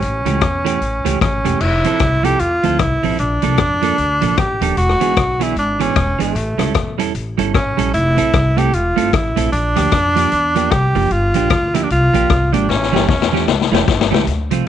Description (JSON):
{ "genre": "ska", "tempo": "152 BPM", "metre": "4/4", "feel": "swing 60% on 8ths", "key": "unclear", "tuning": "A4 = 438 Hz", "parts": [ { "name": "clear tenor saxophone", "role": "melody", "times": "0.0-13.5 s", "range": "A3 to G4", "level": "-18 LUFS", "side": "equal", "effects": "none" }, { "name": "upright bass", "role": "bass", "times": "0.0-14.6 s", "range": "Eb1 to F2", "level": "-20 LUFS", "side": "left 1 dB", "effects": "none" }, { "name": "street-band drum kit", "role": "drums", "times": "0.0-14.6 s", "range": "crash cymbal, hi-hat, kick drum, rim click, snare drum", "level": "-19 LUFS", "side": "left 5 dB", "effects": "vintage 12-bit sampler grit" }, { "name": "clean electric guitar", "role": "accompaniment", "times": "0.3-14.6 s", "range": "E3 to A4", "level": "-20 LUFS", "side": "right 11 dB", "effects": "wide subtle chorus" } ], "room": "light reverb, small room ambience", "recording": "1960s-style stereo", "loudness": "-13 LUFS", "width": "side -10 dB against mid", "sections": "0.0-1.6 A section; 1.6-14.3 B section", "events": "drum fill 12.7-14.3", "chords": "0.0 A7; 1.6 Fmaj7; 3.2 Bbmaj7; 4.8 E7; 6.4 A7; 7.9 Fmaj7; 9.5 Bb6; 11.1 Gm7; 12.7 A7", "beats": "| 0.02 0.42 0.82 1.21 | 1.61 2.00 2.40 2.80 | 3.19 3.59 3.98 4.38 | 4.78 5.17 5.57 5.96 | 6.36 6.75 7.15 7.55 | 7.94 8.34 8.73 9.13 | 9.53 9.92 10.32 10.72 | 11.11 11.51 11.90 12.30 | 12.70 13.09 13.49 13.88 | 14.28" }